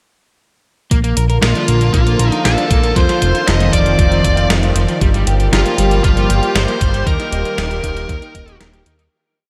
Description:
synthwave; 117 BPM; 4/4; straight; Bb major; A4 = 440 Hz
lush unison pad; sustained chords; 1.2-9.1 s; D3 to G4; -22 LUFS; equal; chorus, phaser, sidechain pumping
overdriven semi-hollow guitar; riff; 0.9-9.0 s; F3 to Eb5; -26 LUFS; equal; analog chorus, delay
fat analog bass; bass; 0.9-9.1 s; Eb1 to F2; -18 LUFS; equal
electronic kick drum; drums; 0.9-8.5 s; -18 LUFS; equal; overdrive
gated 80s digital drum machine; drums; 0.9-9.1 s; hi-hat, snare drum; -24 LUFS; equal; gated reverb, gated reverb snare
fuzz lead guitar; melody; 1.4-8.6 s; F4 to Eb5; -22 LUFS; equal; distortion, delay
moderate huge ambient reverb, RT60 8.2 s; dreamy mix soaked in reverb; -14 LUFS; mono
0.9-9.1 verse
fade-out 6.4-9.1
0.9 Bbmaj7; 3.0 F7(no3); 5.0 Gm7; 7.1 Eb

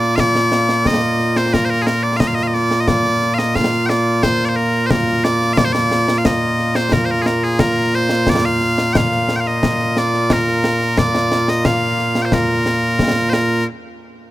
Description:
scottish traditional, Scottish pipe music; 89 BPM; 4/4; straight; Bb major; A4 = 437 Hz
loud bright bagpipes; melody; 0.0-13.6 s; Bb2 to G5; -15 LUFS; equal
concert snare drum and concert bass drum; drums; 0.0-13.6 s; -20 LUFS; left 1 dB
light reverb; -14 LUFS; side -16 dB against mid
0.0-13.7 A section

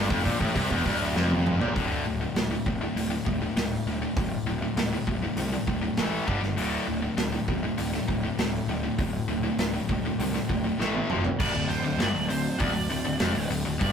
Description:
heavy metal; 100 BPM; 4/4; straight; D minor; A4 = 441 Hz
distorted electric guitar; riff; 0.0-1.7 s; D2 to C3; -33 LUFS; right 2 dB; overdrive
heavy high-gain guitar; riff; 0.0-13.9 s; D2 to A3; -29 LUFS; left 5 dB; distortion
high-gain distorted guitar; riff; 0.0-13.9 s; D2 to A3; -35 LUFS; right 9 dB; distortion
fuzz picked electric bass; bass; 0.0-13.9 s; D1 to C2; -31 LUFS; right 1 dB; overdrive
big rock drum kit; drums; 0.1-13.9 s; crash cymbal, hi-hat, kick drum, snare drum, toms; -30 LUFS; right 1 dB
high-gain lead guitar; melody; 11.4-13.9 s; C5 to D5; -32 LUFS; right 3 dB; distortion, ping-pong delay
light reverb; rough rehearsal-room recording, tube saturation; -24 LUFS; side -7 dB against mid
0.0-1.8 A section; 1.8-11.4 B section; 11.4-13.9 C section
drum fill 1.2-1.8, 10.8-11.4; lead electric guitar solo 11.4-13.9
0.0 Dm; 1.8 D5; 6.0 A5; 6.3 G5; 6.6 D5; 10.8 A5; 11.1 F5; 11.4 Dm

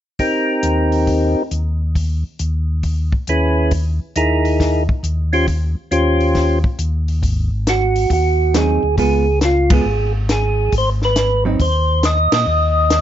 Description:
soul jazz organ trio; 137 BPM; 4/4; swing 66% on 8ths; Ab mixolydian from 7.2 s; A4 = 441 Hz
percussive tonewheel organ; melody; 0.2-13.0 s; C4 to Eb5; -17 LUFS; right 1 dB; slow rotary speaker
compact cocktail drum kit; drums; 0.2-13.0 s; hi-hat, kick drum, ride cymbal, snare drum; -21 LUFS; left 1 dB
mellow tonewheel organ; bass; 0.6-13.0 s; Ab1 to Bb2; -18 LUFS; equal; slow rotary speaker
hollow-body jazz guitar; accompaniment; 8.5-11.6 s; Gb3 to F4; -21 LUFS; right 4 dB
light reverb; nothing above 7.5 kHz; -14 LUFS; side -11 dB against mid
0.2-7.2 A section; 7.2-13.0 B section
band accent 9.6, 12.3
0.2 Eb6; 7.2 Ab7; 9.0 Db7; 10.7 Ab; 12.5 N.C.

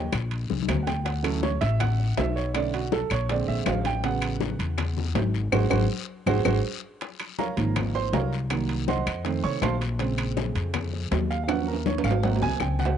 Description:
Afro-Cuban jazz; 161 BPM; 4/4; straight; Db major from 7.0 s; A4 = 441 Hz
warm baby grand piano; accompaniment; 0.0-13.0 s; C#3 to Db6; -29 LUFS; right 8 dB; cassette tape
upright bass; bass; 0.0-13.0 s; G#1 to F2; -26 LUFS; left 1 dB
bongos; percussion; 0.1-13.0 s; -35 LUFS; left 13 dB
claves; percussion; 0.1-12.8 s; -35 LUFS; left 11 dB
guiro; percussion; 0.1-13.0 s; -41 LUFS; left 12 dB
timbales; percussion; 0.1-12.9 s; -32 LUFS; right 10 dB
congas; percussion; 0.3-12.9 s; -33 LUFS; left 12 dB
small room ambience; home recording on cassette, nothing above 10.9 kHz; -23 LUFS; side -9 dB against mid
0.0-7.0 A section; 7.0-13.0 A section
drum fill 0.0-1.1, 6.5-7.0, 11.5-13.0; grand piano solo 0.0-13.0; band accent 5.5-7.0
0.0 D#6 (rootless); 1.1 Dmaj9; 2.5 Bm7; 3.3 Bb9; 4.0 A6; 5.5 G#7; 7.0 Db6; 8.5 Cm7b5; 9.3 F7; 10.0 Bbm7; 11.5 Ebm7; 12.2 Ab7

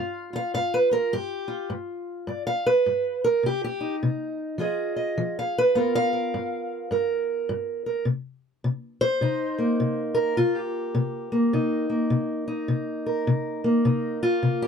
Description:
acoustic country blues, solo or duo; 104 BPM; 4/4; swing 62% on 8ths; C minor; A4 = 440 Hz
fingerpicked steel-string acoustic guitar; solo; 0.0-14.7 s; G2 to F5; -23 LUFS; equal
light reverb; -23 LUFS; side -6 dB against mid
0.0-8.1 A section; 8.1-14.7 A section
steel-string acoustic guitar solo 0.0-8.1, 8.1-14.7
0.0 G7; 3.4 Cm; 4.6 Fm7; 5.8 G7#9; 8.1 Cm7

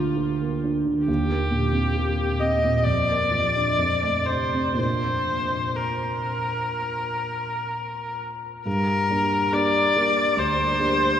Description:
classical, romantic duo for viola and grand piano; 60-72 BPM; 4/4; rubato; Bb major; A4 = 443 Hz
rich viola; melody; 0.0-11.2 s; F4 to Eb5; -23 LUFS; left 1 dB
dark concert grand piano; accompaniment; 0.0-11.2 s; D2 to G4; -25 LUFS; right 1 dB
wet cathedral reverb, RT60 5.9 s; recorded in a church or concert hall; -21 LUFS; side -9 dB against mid
0.0-8.7 A section; 8.7-11.2 B section
0.0 Bb/D; 1.1 Cm7/Eb; 2.9 Bb/F; 3.8 F; 4.8 Bb; 8.7 Gm

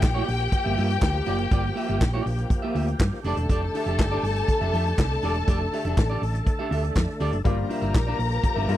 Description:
disco; 121 BPM; 4/4; straight; G dorian; A4 = 440 Hz
dark symphonic string section; second line; 0.0-8.8 s; G4 to Bb5; -29 LUFS; left 4 dB
clean electric guitar; accompaniment; 0.0-8.8 s; Bb3 to E5; -31 LUFS; right 3 dB
overdriven tonewheel organ; sustained chords; 0.0-8.8 s; Bb2 to A4; -33 LUFS; equal; chorus vibrato, slow rotary speaker
hollow-body short-scale fingered electric bass; bass; 0.0-8.8 s; E1 to G2; -26 LUFS; equal
vintage drum kit; drums; 0.0-8.8 s; handclaps, hi-hat, kick drum, snare drum; -24 LUFS; equal
warm baby grand piano; accompaniment; 7.4-8.8 s; G3 to F4; -31 LUFS; left 7 dB
little or no reverb; dry, close 1970s-style studio recording; -22 LUFS; side -13 dB against mid
0.0-8.8 A section
0.0 Gm7; 3.2 F69; 7.4 Gm7

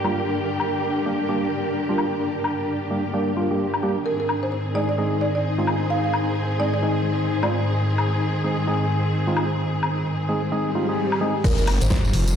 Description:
bass house; 130 BPM; 4/4; swing 61% on 16ths; A4 = 440 Hz
warm studio string section; sustained chords; 0.0-12.4 s; G2 to Ab4; -25 LUFS; equal; sidechain pumping, low-pass filter
percussive organ stab; stabs; 0.0-11.3 s; G3 to Ab4; -26 LUFS; right 1 dB; chorus, cassette tape, sidechain pumping, ping-pong delay
big-room dance drum kit; drums; 0.0-12.3 s; crash cymbal, hi-hat, snare drum, woodblock; -28 LUFS; left 3 dB; low-pass filter on hats, low-pass filter on snare, low-pass filter on perc, low-pass filter on cymbals
ethereal airy pad; texture; 0.0-11.4 s; D4 to Ab5; -28 LUFS; left 2 dB; ensemble chorus, built-in reverb, sidechain pumping
buzzing marimba with medium mallets; melody; 4.1-7.8, 11.4-12.0 s; Bb4 to F5; -28 LUFS; right 4 dB; ping-pong delay
swell and downlifter; sound effects; 10.7-12.4 s; -28 LUFS; equal
wobble bass; bass; 11.4-12.4 s; F1 to Ab1; -20 LUFS; equal; chorus, overdrive, sidechain pumping
electronic kick drum; drums; 11.4-12.0 s; -21 LUFS; equal
tambourine; percussion; 11.5-12.3 s; -36 LUFS; left 1 dB
moderate plate reverb, RT60 1.3 s; played on a big sound system in a bare room, stone room reverb; -20 LUFS; side -8 dB against mid
0.0-11.4 A section
filter sweep on synth stab 0.0-11.4; swell 10.7-11.4
0.0 Gm; 4.1 Ab; 11.4 Gm

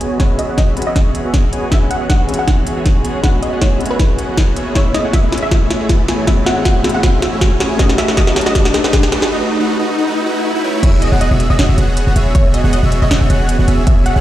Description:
future bass; 158 BPM; 4/4; swing 53% on 16ths, half-time; E major; A4 = 440 Hz
wide unison pluck; melody; 0.0-14.2 s; B4 to F#5; -24 LUFS; equal; sidechain pumping, dub echo
warm baby grand piano; accompaniment; 0.0-10.9 s; G#3 to F#4; -24 LUFS; left 4 dB; sidechain pumping, dub echo
dark chamber string section; sustained chords; 0.0-14.2 s; E2 to A4; -26 LUFS; equal; sidechain pumping, low-pass filter
supersaw chords; riff; 0.0-14.2 s; A3 to G#5; -20 LUFS; right 1 dB; sidechain pumping, low-pass filter
trap drum kit; drums; 0.0-14.1 s; crash cymbal, hi-hat, snare drum; -20 LUFS; equal
riser and swell; sound effects; 0.3-10.8 s; -23 LUFS; equal
electronic kick drum; drums; 0.2-13.9 s; -13 LUFS; equal
airy dreamy lead; arpeggios; 10.8-14.2 s; E5 to F#5; -27 LUFS; left 1 dB; chorus, sidechain pumping
warm 808-style bass; bass; 10.8-14.2 s; E1; -13 LUFS; equal; sidechain pumping
light reverb; played on a big sound system in a bare room, large studio reverb; -12 LUFS; side -13 dB against mid
0.0-10.8 A section; 10.8-14.2 B section
build-up 0.0-10.8; drum fill 0.0-9.3; filter sweep on supersaw synth 0.0-10.8; filter sweep on synth pluck 0.0-10.8; riser 0.3-10.8; break 9.3-10.8; swell 10.1-10.8; drop 10.8-14.2
0.0 E69; 4.8 Amaj7; 7.8 B7; 10.8 E69

